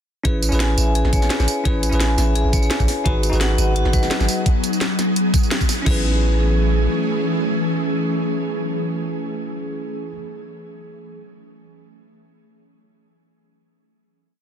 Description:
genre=liquid drum and bass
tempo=171 BPM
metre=4/4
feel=swing 54% on 16ths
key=A lydian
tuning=A4 = 445 Hz
part: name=bell-like tine electric piano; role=accompaniment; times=0.2-10.2 s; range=C#4 to B4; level=-26 LUFS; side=equal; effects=ping-pong delay
part: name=vibraphone with hard mallets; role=arpeggios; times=0.2-6.0 s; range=F#4 to G#5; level=-29 LUFS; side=left 2 dB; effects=ping-pong delay
part: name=long sustained 808-style bass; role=bass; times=0.2-6.9 s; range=G#1 to A1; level=-19 LUFS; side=equal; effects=none
part: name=drum and bass drum kit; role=drums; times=0.2-5.9 s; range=crash cymbal, hi-hat, snare drum, tambourine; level=-25 LUFS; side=equal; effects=none
part: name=electronic kick drum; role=drums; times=0.2-5.9 s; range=none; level=-19 LUFS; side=equal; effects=none
part: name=ethereal airy pad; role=sustained chords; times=3.6-9.4 s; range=E3 to G#4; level=-23 LUFS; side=equal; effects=ensemble chorus, built-in reverb, sidechain pumping
room=digital ambience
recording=dense, heavily limited modern master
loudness=-17 LUFS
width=side -8 dB against mid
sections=0.2-5.9 drop; 5.9-8.7 final chord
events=drop 0.2-5.9; band accent 5.5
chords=0.2 Amaj7; 3.1 G#m7; 5.9 Amaj7

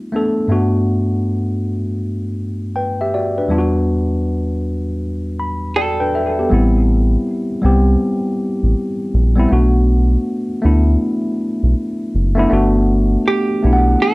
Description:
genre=hip hop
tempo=80 BPM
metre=4/4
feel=swing 63% on 16ths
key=unclear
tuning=A4 = 440 Hz
part: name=mellow tine electric piano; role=accompaniment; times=0.0-14.1 s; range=E2 to B5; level=-17 LUFS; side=left 1 dB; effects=cassette tape, low-pass filter
part: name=hollow-body jazz guitar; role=melody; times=5.8-6.5, 13.3-14.1 s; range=G4 to A4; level=-20 LUFS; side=right 4 dB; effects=low-pass filter
part: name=round analog bass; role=bass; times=6.5-14.0 s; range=F#1 to D2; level=-14 LUFS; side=equal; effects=none
room=moderate studio reverb, RT60 0.6 s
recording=cassette tape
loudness=-14 LUFS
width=side -22 dB against mid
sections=0.0-6.5 A section; 6.5-14.1 B section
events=tine electric piano fill 5.0-6.5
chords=0.0 Bm7; 3.5 Em9; 6.5 Am7; 9.5 Bm7; 12.5 Gmaj7

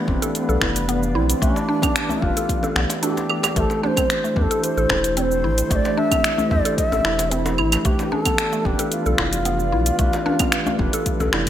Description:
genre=organic downtempo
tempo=112 BPM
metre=4/4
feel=straight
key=unclear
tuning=A4 = 436 Hz
part: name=breathy bass bansuri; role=melody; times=0.0-11.5 s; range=B3 to E5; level=-24 LUFS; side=equal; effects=digital delay
part: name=tine electric piano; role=accompaniment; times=0.0-11.5 s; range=E3 to C5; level=-27 LUFS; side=left 1 dB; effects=medium tremolo, vintage 12-bit sampler grit, sidechain pumping, digital delay
part: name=warbly tape-like pad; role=sustained chords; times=0.0-11.5 s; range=A3 to F5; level=-31 LUFS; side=equal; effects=chorus, built-in reverb, sidechain pumping
part: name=mallet-like synth pluck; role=arpeggios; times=0.0-11.5 s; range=A3 to A4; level=-26 LUFS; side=right 1 dB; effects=chorus, digital delay
part: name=warm sub bass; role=bass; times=0.1-11.5 s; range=E1 to E2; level=-23 LUFS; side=equal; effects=none
part: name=electronic kick drum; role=drums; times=0.1-11.5 s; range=none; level=-25 LUFS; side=equal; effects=none
part: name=djembe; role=percussion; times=0.1-11.4 s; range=none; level=-30 LUFS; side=left 2 dB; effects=none
part: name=afro-pop drum kit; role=drums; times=0.2-11.5 s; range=claves, finger snaps, hi-hat, shaker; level=-24 LUFS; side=right 1 dB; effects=gated reverb
room=moderate lush hall reverb, RT60 1.7 s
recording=bright 1980s-style digital production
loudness=-18 LUFS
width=side -11 dB against mid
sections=0.0-11.5 A section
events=none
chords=0.0 Bdim; 3.6 Am; 7.8 Bdim

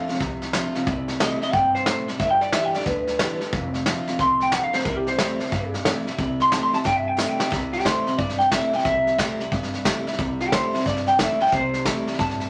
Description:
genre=rockabilly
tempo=180 BPM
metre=4/4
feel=swing 64% on 8ths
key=C major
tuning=A4 = 440 Hz
part: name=picked steel-string acoustic guitar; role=accompaniment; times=0.0-12.5 s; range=F2 to G4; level=-33 LUFS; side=equal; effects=none
part: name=electric guitar through a small old amp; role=riff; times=0.0-12.5 s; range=F2 to A3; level=-32 LUFS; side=equal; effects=none
part: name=upright bass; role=bass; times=0.1-12.5 s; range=F1 to G2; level=-37 LUFS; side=equal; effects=none
part: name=vintage brush drum kit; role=drums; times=0.1-12.4 s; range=hi-hat, kick drum, snare drum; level=-28 LUFS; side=equal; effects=none
part: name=electric guitar through a small old amp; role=melody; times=1.2-12.5 s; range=G4 to C6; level=-24 LUFS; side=equal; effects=harmonic tremolo
room=moderate club reverb, RT60 0.8 s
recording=none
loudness=-23 LUFS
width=mono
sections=0.0-7.5 A section; 7.5-12.5 B section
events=drum fill 6.9-7.5; clean electric guitar solo 7.5-12.5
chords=0.0 F; 0.9 C; 2.2 G; 3.5 F; 4.9 C

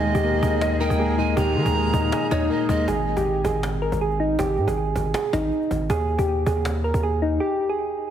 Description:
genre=hip hop, trap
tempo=159 BPM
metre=4/4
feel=half-time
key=unclear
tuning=A4 = 440 Hz
part: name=soft electric-piano-like synth keys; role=melody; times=0.0-8.1 s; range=D#4 to A#4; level=-24 LUFS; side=right 1 dB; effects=chorus, digital delay
part: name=breathy bright pan flute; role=second line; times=0.0-2.9 s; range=C#5 to A#5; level=-28 LUFS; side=right 4 dB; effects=digital delay
part: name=dark concert grand piano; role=accompaniment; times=0.0-2.9 s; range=D#3 to D#5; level=-26 LUFS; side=left 3 dB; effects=none
part: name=granular cloud pad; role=sustained chords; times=0.0-2.8 s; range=A#2 to G#4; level=-32 LUFS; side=left 1 dB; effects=built-in reverb
part: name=distorted 808-style bass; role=bass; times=0.0-7.4 s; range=G#1 to D#3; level=-25 LUFS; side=equal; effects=distortion
part: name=cajon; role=drums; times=0.0-7.2 s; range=none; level=-32 LUFS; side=equal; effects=none
room=moderate concert hall reverb, RT60 1.8 s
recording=heavily compressed radio sound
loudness=-20 LUFS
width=side -10 dB against mid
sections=0.0-2.9 A section; 2.9-8.1 B section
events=break 7.4-8.1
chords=0.0 D#sus4; 2.9 G#5; 5.9 D#sus4

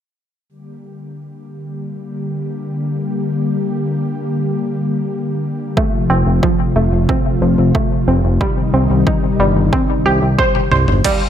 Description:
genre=synthwave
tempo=91 BPM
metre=4/4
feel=straight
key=G minor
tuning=A4 = 441 Hz
part: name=warm analog pad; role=sustained chords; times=0.5-11.0 s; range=C3 to G4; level=-19 LUFS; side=left 2 dB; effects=chorus, sidechain pumping
part: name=analog pluck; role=arpeggios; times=5.8-11.2 s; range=F3 to C5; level=-18 LUFS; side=right 1 dB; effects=chorus, cassette tape, ping-pong delay
part: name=electronic kick drum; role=drums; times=5.8-11.2 s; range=none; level=-19 LUFS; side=equal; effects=overdrive
part: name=fat analog bass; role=bass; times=6.1-11.0 s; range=F1 to C2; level=-15 LUFS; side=equal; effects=sidechain pumping
part: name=detuned 8-bit digital drum machine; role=drums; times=10.4-11.2 s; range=crash cymbal, hi-hat, toms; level=-20 LUFS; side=equal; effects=none
room=moderate plate reverb, RT60 1.7 s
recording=bright 1980s-style digital production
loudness=-14 LUFS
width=side -9 dB against mid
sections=0.5-11.0 A section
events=filter sweep on analog synth pad 0.5-11.0; drum fill 10.4-11.0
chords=0.5 Gm; 5.8 F; 8.4 Cm

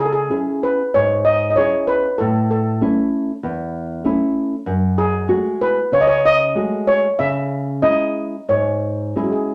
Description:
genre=fado-style ballad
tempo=95 BPM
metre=4/4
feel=rubato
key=C# minor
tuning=A4 = 442 Hz
part: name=steel pan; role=melody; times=0.0-9.5 s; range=F#4 to E5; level=-19 LUFS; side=equal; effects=none
part: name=nylon-string guitar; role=accompaniment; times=0.0-9.5 s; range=E2 to G#4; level=-22 LUFS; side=equal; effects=none
room=wet small room reverb, RT60 0.5 s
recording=none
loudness=-18 LUFS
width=mono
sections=0.0-9.5 A section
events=none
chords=0.0 C#m; 2.2 A; 4.7 F#madd9; 7.2 C#m

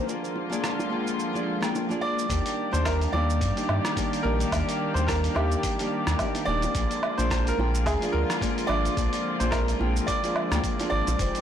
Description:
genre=sunset chillout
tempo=108 BPM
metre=4/4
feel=swing 57% on 16ths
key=Eb major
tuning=A4 = 440 Hz
part: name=nylon-string guitar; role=accompaniment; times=0.0-11.4 s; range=Ab3 to G5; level=-30 LUFS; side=left 1 dB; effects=auto-pan, ping-pong delay
part: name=warm chamber string section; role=sustained chords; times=0.0-11.4 s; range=C3 to D5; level=-32 LUFS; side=left 2 dB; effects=none
part: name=dusty soul sampler-style drum kit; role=drums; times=0.1-11.4 s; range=cabasa, hi-hat, rim click, woodblock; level=-32 LUFS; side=right 1 dB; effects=soft clipping on snare
part: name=bongos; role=percussion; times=0.4-11.2 s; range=none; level=-37 LUFS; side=right 1 dB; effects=none
part: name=bright concert grand piano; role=melody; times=2.0-11.4 s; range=G4 to D5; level=-30 LUFS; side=right 1 dB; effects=ping-pong delay
part: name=warm sub bass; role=bass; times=2.3-11.3 s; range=Eb1 to G2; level=-26 LUFS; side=equal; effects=tube saturation
part: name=electronic kick drum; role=drums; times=2.3-11.3 s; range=none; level=-32 LUFS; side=equal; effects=none
room=light reverb, small room ambience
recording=blown-out, overdriven recording, overdrive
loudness=-23 LUFS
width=side -9 dB against mid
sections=0.0-2.3 A section; 2.3-11.4 B section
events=break 0.1-2.3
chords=0.1 Bb7; 2.3 Ebmaj7; 6.7 Bb7

